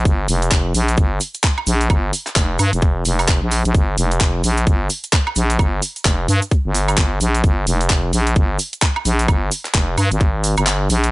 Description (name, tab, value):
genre	bass house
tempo	130 BPM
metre	4/4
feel	swing 60% on 16ths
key	unclear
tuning	A4 = 439 Hz
part	growling FM bass	bass	0.0-11.1 s	F1 to G2	-17 LUFS	equal	overdrive, sidechain pumping
part	electronic kick drum	drums	0.1-10.3 s	none	-16 LUFS	equal	overdrive
part	garage drum kit	drums	0.1-11.1 s	handclaps, hi-hat, woodblock	-21 LUFS	right 1 dB	overdrive
part	cabasa	percussion	0.1-11.1 s	none	-28 LUFS	right 3 dB	none
room	little or no reverb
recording	nothing above 10.9 kHz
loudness	-15 LUFS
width	side -21 dB against mid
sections	0.0-11.1 A section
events	kick drops out 10.7-11.1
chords	none